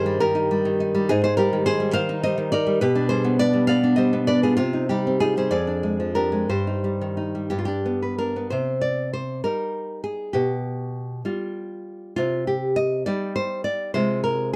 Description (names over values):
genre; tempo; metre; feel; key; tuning
romantic piece for solo classical guitar; 57-70 BPM (dotted quarters); 6/8; rubato; C minor; A4 = 441 Hz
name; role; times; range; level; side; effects
nylon-string guitar; solo; 0.0-14.6 s; F2 to F5; -23 LUFS; equal; none
room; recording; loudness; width
light reverb; dry, close 1970s-style studio recording; -23 LUFS; mono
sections
0.0-8.5 A section; 8.5-14.6 B section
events
none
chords
0.0 Eb/G; 1.1 Abmaj7; 2.8 G/B; 4.6 Cm; 5.5 Ddim/F; 6.5 Cm/G; 7.5 G; 8.5 Cm; 10.3 G7/B; 12.2 Cm; 14.0 Fmadd11/C